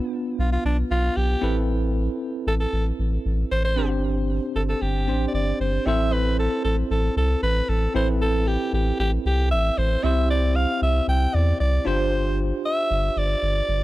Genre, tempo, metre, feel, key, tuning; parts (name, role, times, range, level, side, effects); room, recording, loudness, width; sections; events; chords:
1980s-style pop; 115 BPM; 4/4; straight; A minor; A4 = 441 Hz
bell-like tine electric piano; accompaniment; 0.0-13.8 s; B3 to C5; -27 LUFS; right 1 dB; medium stereo tremolo
raspy alto saxophone; melody; 0.4-13.8 s; D4 to G5; -26 LUFS; equal; tape echo
round analog bass; bass; 0.4-13.8 s; G1 to E2; -22 LUFS; equal
little or no reverb; dry, close 1970s-style studio recording; -20 LUFS; side -16 dB against mid
0.0-5.9 A section; 5.9-13.8 B section
0.0 Bdim; 1.4 Amadd9; 3.8 Gsus4; 5.9 Am; 10.0 C; 11.9 G7sus4